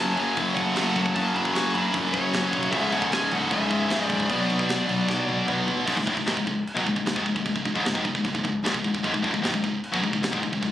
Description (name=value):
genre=heavy metal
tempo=152 BPM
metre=4/4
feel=straight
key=unclear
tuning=A4 = 440 Hz
part: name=high-gain lead guitar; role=melody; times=0.0-5.4 s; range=C#5 to C#6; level=-30 LUFS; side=equal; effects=distortion, tape echo
part: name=high-gain lead guitar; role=second line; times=0.0-5.4 s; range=F#3 to F#4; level=-32 LUFS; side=right 1 dB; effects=none
part: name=distorted electric guitar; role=riff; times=0.0-10.7 s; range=C#2 to B3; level=-27 LUFS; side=left 5 dB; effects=overdrive
part: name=fuzz guitar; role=riff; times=0.0-5.9 s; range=C#2 to B3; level=-34 LUFS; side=equal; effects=none
part: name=heavy high-gain guitar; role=riff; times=0.0-10.7 s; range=C#2 to B3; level=-28 LUFS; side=right 5 dB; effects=distortion
part: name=upright bass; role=bass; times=0.0-10.7 s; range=C#1 to B1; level=-34 LUFS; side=equal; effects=none
part: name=tight metal drum kit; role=drums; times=0.2-10.7 s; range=china cymbal, crash cymbal, kick drum, snare drum, toms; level=-30 LUFS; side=equal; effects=none
room=light reverb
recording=recorded on a phone in the room, studio ambience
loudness=-22 LUFS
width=side -12 dB against mid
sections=0.0-5.9 A section; 5.9-10.7 B section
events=drum fill 5.1-5.9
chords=0.0 F#m; 2.7 C#m; 4.3 Bm; 5.9 C#5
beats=0.37 0.76 | 1.16 1.55 1.94 2.33 | 2.73 3.12 3.51 3.91 | 4.30 4.69 5.09 5.48 | 5.87 6.27 6.66 7.06 | 7.45 7.85 8.24 8.64 | 9.04 9.43 9.83 10.23 | 10.62